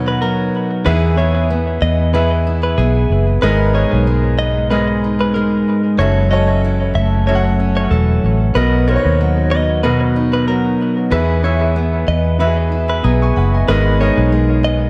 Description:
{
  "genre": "acoustic pop",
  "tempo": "94 BPM",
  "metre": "4/4",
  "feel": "swing 55% on 16ths",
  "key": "B major",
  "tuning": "A4 = 439 Hz",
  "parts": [
    { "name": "bright upright piano", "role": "accompaniment", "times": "0.0-14.9 s", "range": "B3 to D#6", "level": "-24 LUFS", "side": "equal", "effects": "analog delay" },
    { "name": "fingerpicked twelve-string acoustic guitar", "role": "accompaniment", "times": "0.0-14.9 s", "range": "F#2 to A#4", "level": "-21 LUFS", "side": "equal", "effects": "analog delay" },
    { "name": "vintage muted fingered electric bass", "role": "bass", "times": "0.0-14.9 s", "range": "E1 to E2", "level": "-18 LUFS", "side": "equal", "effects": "none" },
    { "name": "direct-recorded clean electric guitar", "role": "arpeggios", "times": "0.1-14.9 s", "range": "G#4 to E5", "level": "-24 LUFS", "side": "equal", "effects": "analog delay" }
  ],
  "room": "moderate spring reverb, RT60 1.4 s, small room ambience",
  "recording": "echo-heavy mix",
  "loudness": "-15 LUFS",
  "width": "mono",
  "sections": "0.0-14.9 A section",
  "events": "none",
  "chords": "0.0 Bmaj7; 0.9 E; 3.4 G#madd9; 6.0 F#m7; 8.6 Bmaj7; 11.1 E; 13.7 G#madd9",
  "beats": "0.22 | 0.86 1.50 2.14 2.78 | 3.43 4.07 4.71 5.35 | 5.99 6.63 7.28 7.92 | 8.56 9.20 9.84 10.48 | 11.12 11.77 12.40 13.05 | 13.69 14.33"
}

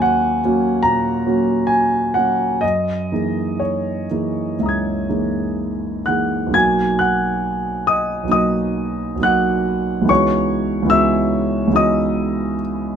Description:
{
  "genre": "classical, impressionist solo piano",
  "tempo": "60-75 BPM",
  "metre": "4/4",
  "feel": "rubato",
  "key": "B major",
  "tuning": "A4 = 440 Hz",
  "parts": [
    { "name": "warm concert grand piano", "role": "solo", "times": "0.0-13.0 s", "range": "B1 to G#6", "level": "-16 LUFS", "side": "equal", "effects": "none" }
  ],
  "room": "light reverb",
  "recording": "close, detailed microphones",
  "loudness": "-16 LUFS",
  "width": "side -8 dB against mid",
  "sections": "0.0-6.5 A section; 6.5-13.0 B section",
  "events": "none",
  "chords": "0.0 D#m7; 2.6 F#13; 10.1 C#m11",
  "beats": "0.03 0.84 1.69 | 2.62 3.60 4.59 5.57 | 6.54 7.44 8.32 9.24 | 10.10 10.91 11.76 12.59"
}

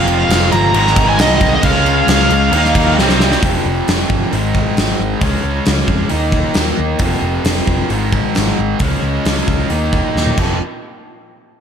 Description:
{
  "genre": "hard rock",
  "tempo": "134 BPM",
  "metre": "4/4",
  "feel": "straight",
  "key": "F minor",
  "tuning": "A4 = 440 Hz",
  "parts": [
    { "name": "smooth overdriven lead guitar", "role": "melody", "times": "0.0-2.9 s", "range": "Eb5 to Bb5", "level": "-16 LUFS", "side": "equal", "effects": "slapback echo, tape echo" },
    { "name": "crunchy overdriven guitar", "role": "riff", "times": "0.0-10.6 s", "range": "F2 to Eb4", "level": "-21 LUFS", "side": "left 10 dB", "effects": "none" },
    { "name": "distorted electric guitar", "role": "riff", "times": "0.0-3.4 s", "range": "Ab2 to F4", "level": "-20 LUFS", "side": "equal", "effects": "distortion, slapback echo" },
    { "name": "tight distorted guitar", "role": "riff", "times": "0.0-10.6 s", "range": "F2 to Eb4", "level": "-20 LUFS", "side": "right 8 dB", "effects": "distortion" },
    { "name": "picked electric bass", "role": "bass", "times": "0.0-10.6 s", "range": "F1 to F2", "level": "-19 LUFS", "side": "equal", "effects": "none" },
    { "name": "gated 80s drum kit", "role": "drums", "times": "0.1-10.5 s", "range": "crash cymbal, hi-hat, kick drum, snare drum, toms", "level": "-17 LUFS", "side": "equal", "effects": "none" }
  ],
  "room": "moderate lush hall reverb, RT60 2.4 s",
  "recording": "big arena sound",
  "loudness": "-12 LUFS",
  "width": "side -8 dB against mid",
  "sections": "0.0-3.4 A section; 3.4-10.6 B section; 10.6-11.6 C section",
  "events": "drum fill 3.0-3.4, 10.2-10.6",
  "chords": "0.0 Fm; 0.7 Ab; 1.6 Db; 2.5 Eb; 3.0 Cm; 3.4 F5; 4.3 Ab5; 5.2 Db; 6.1 Eb5; 7.0 F5; 7.9 Ab5; 8.8 Db5; 9.7 Eb5; 10.4 F5; 10.6 N.C.",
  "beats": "0.30 0.74 1.19 | 1.64 2.08 2.53 2.98 | 3.42 3.87 4.32 4.76 | 5.21 5.66 6.11 6.56 | 7.01 7.46 7.90 8.35 | 8.80 9.25 9.70 10.15"
}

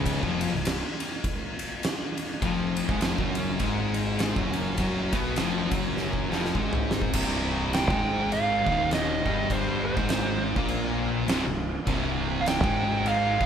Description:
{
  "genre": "stoner and doom metal",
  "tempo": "102 BPM",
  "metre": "4/4",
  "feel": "swing 58% on 8ths",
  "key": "C phrygian",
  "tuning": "A4 = 441 Hz",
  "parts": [
    { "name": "distorted electric guitar", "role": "riff", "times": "0.0-13.5 s", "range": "C2 to Cb4", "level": "-33 LUFS", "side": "right 1 dB", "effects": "overdrive" },
    { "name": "thick fuzz guitar", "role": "riff", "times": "0.0-13.5 s", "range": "C2 to Cb4", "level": "-30 LUFS", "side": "left 9 dB", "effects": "distortion" },
    { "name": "thick fuzz guitar", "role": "riff", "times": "0.0-13.5 s", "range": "C2 to Cb4", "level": "-33 LUFS", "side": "right 7 dB", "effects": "distortion" },
    { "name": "fuzz fingered electric bass", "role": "bass", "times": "0.0-13.5 s", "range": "C1 to Cb2", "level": "-33 LUFS", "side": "equal", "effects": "overdrive" },
    { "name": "oversized low-tuned drum kit", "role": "drums", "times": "0.1-13.5 s", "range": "crash cymbal, kick drum, ride cymbal, snare drum, toms", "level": "-29 LUFS", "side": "right 1 dB", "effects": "none" },
    { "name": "fuzz lead guitar", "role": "melody", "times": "7.7-13.5 s", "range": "C5 to G5", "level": "-27 LUFS", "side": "right 4 dB", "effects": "distortion" }
  ],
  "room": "light reverb",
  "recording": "band playing live in one room",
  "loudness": "-24 LUFS",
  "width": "side -8 dB against mid",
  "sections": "0.0-7.1 A section; 7.1-13.5 B section",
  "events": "drum fill 6.0-7.1",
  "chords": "0.0 N.C.; 2.4 Abm7; 7.1 Cm",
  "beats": "| 0.06 0.65 1.24 1.83 | 2.42 3.02 3.61 4.20 | 4.79 5.38 5.97 6.56 | 7.15 7.74 8.33 8.92 | 9.51 10.10 10.69 11.28 | 11.87 12.46 13.06"
}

